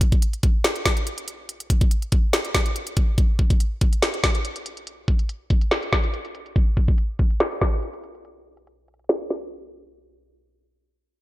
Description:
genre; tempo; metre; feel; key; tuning
hip hop; 142 BPM; 4/4; half-time; none; none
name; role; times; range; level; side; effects
trap drum kit; drums; 0.0-9.5 s; hi-hat, kick drum, snare drum; -20 LUFS; equal; none
room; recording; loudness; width
light reverb; low-pass filter, faint mains hum; -20 LUFS; side -17 dB against mid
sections
0.0-3.2 A section; 3.2-9.9 B section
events
filter sweep 3.2-9.9; break 9.5-9.9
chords
none

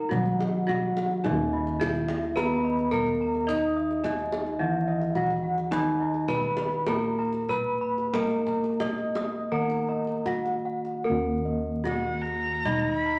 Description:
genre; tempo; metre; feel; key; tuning
Javanese gamelan; 75-107 BPM; 4/4; straight; Eb pelog; A4 = 441 Hz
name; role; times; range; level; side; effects
gamelan-type bronze metallophone; melody; 0.0-13.2 s; Eb4 to Eb5; -32 LUFS; equal; none
gamelan-type bronze metallophone; accompaniment; 0.0-13.2 s; Eb3 to Eb4; -33 LUFS; equal; none
gamelan-type bronze metallophone; arpeggios; 0.0-11.0 s; Eb5 to Eb6; -37 LUFS; equal; none
gamelan-type bossed gongs; bass; 0.0-13.2 s; Eb2 to Eb5; -36 LUFS; equal; none
gamelan-type bossed gongs; arpeggios; 0.1-13.2 s; Eb5 to Cb6-20c; -37 LUFS; equal; none
kendang; percussion; 0.1-12.8 s; none; -37 LUFS; equal; none
clear erhu; second line; 11.9-13.2 s; Gb5-33c to Cb6-20c; -31 LUFS; equal; none
room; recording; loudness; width
wet studio reverb, RT60 0.9 s; vinyl crackle; -27 LUFS; mono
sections
0.0-1.2 A section; 1.2-11.1 B section; 11.1-13.2 C section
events
none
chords
none

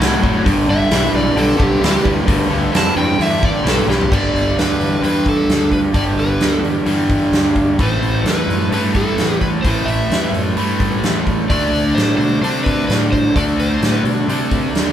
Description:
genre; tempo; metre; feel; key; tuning
blues rock power trio and southern rock; 130 BPM; 4/4; straight; unclear; A4 = 440 Hz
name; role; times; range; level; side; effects
cranked stack guitar; riff; 0.0-14.9 s; G2 to D4; -17 LUFS; equal; overdrive
fuzz fingered electric bass; bass; 0.0-14.9 s; F1 to C3; -22 LUFS; equal; overdrive
huge arena drum kit; drums; 0.0-14.9 s; crash cymbal, hi-hat, kick drum, snare drum, toms; -19 LUFS; equal; none
overdriven slide guitar; melody; 0.7-14.0 s; G4 to A5; -21 LUFS; right 1 dB; none
room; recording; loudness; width
moderate large studio reverb, RT60 0.9 s; band playing live in one room; -14 LUFS; side -10 dB against mid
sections
0.0-4.1 A section; 4.1-14.9 B section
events
electric slide guitar solo 0.0-4.1; drum fill 3.9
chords
0.5 G; 7.8 A5; 11.5 D5

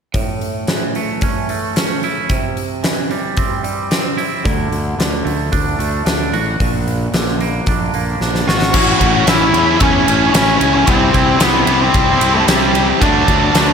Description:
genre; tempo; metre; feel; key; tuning
quiet-loud alternative rock; 112 BPM; 4/4; straight; unclear; A4 = 440 Hz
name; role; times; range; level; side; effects
twangy electric guitar; arpeggios; 0.1-8.8 s; A2 to F#4; -21 LUFS; right 5 dB; phaser, slapback echo
huge arena drum kit; drums; 0.1-13.7 s; crash cymbal, hi-hat, kick drum, ride cymbal, snare drum; -17 LUFS; equal; none
fuzz fingered electric bass; bass; 4.5-13.7 s; G#1 to E2; -19 LUFS; equal; overdrive
octave-fuzz lead guitar; melody; 8.5-13.7 s; G3 to F#5; -15 LUFS; equal; distortion, slapback echo
cranked stack guitar; riff; 8.7-13.7 s; A2 to E4; -18 LUFS; left 10 dB; overdrive, slapback echo
tight distorted guitar; riff; 8.7-13.7 s; A2 to F#4; -17 LUFS; right 10 dB; distortion, slapback echo
room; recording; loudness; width
moderate concert hall reverb, RT60 2.4 s; big arena sound; -13 LUFS; side -6 dB against mid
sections
0.1-8.7 A section; 8.7-13.7 B section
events
drum fill 8.2-8.7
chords
0.1 A; 2.3 C; 4.5 D; 6.6 Bb; 8.7 A; 10.9 C; 13.0 D

